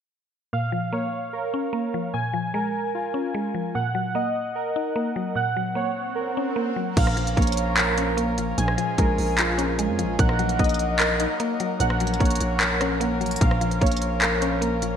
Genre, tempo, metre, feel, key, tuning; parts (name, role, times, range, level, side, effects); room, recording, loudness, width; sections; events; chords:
hip hop, trap; 149 BPM; 4/4; half-time; Bb minor; A4 = 439 Hz
mallet-like synth pluck; accompaniment; 0.5-15.0 s; Bb2 to Eb4; -28 LUFS; left 1 dB; chorus, low-pass filter
warbly lo-fi synth keys; arpeggios; 0.5-15.0 s; F4 to Ab5; -27 LUFS; right 2 dB; chorus, low-pass filter, ping-pong delay
swell; sound effects; 5.5-7.0 s; -36 LUFS; right 1 dB
hand-pumped harmonium; sustained chords; 7.0-15.0 s; F3 to Bb4; -30 LUFS; left 2 dB; stereo widening
growling 808-style bass; bass; 7.0-15.0 s; Bb1 to F2; -26 LUFS; equal
trap drum kit; drums; 7.0-14.9 s; crash cymbal, handclaps, hi-hat, kick drum, rim click; -24 LUFS; equal; vintage 12-bit sampler grit, gated reverb
moderate plate reverb, RT60 1.6 s, digital ambience; bright 1980s-style digital production; -21 LUFS; side -8 dB against mid
0.5-7.0 A section; 7.0-15.0 B section
swell 5.5-7.0
0.5 Bbm; 2.1 Db/Bb; 3.7 Ebm/Bb; 5.4 Gb/Bb; 7.0 Bbm; 8.6 Db/Bb; 10.2 Ebm/Bb; 11.8 Gb/Bb; 13.4 Bbm